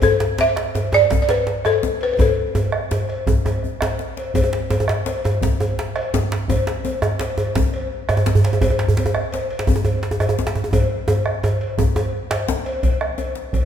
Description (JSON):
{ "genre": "west african traditional, West African drum ensemble", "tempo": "112 BPM (dotted quarters)", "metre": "12/8", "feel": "straight", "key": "unclear", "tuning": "A4 = 440 Hz", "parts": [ { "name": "balafon", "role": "melody", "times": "0.0-2.9 s", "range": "A4 to E5", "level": "-18 LUFS", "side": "equal", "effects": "none" }, { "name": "bombo", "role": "percussion", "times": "0.0-13.7 s", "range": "none", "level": "-25 LUFS", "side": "right 2 dB", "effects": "none" }, { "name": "cowbell", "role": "percussion", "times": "0.0-13.7 s", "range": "none", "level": "-27 LUFS", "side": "left 3 dB", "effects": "none" }, { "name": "djembe", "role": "percussion", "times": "0.0-13.7 s", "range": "none", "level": "-26 LUFS", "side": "left 5 dB", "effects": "none" }, { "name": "djembe", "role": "percussion", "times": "0.0-12.5 s", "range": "none", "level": "-20 LUFS", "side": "right 2 dB", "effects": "none" } ], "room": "moderate concert hall reverb, RT60 2.1 s", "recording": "minimal, uncompressed stereo recording", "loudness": "-17 LUFS", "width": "side -9 dB against mid", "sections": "0.0-4.3 A section; 4.3-12.8 B section", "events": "speeding up 0.0-13.7; drum fill 2.2-4.3, 10.7-12.8", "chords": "none", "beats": "| 0.02 0.56 1.11 1.65 | 2.19 2.73 3.27 3.81 | 4.35 4.89 5.42 5.96 | 6.49 7.03 7.56 8.09 | 8.62 9.15 9.68 10.21 | 10.74 11.26 11.79 12.31 | 12.84 13.36" }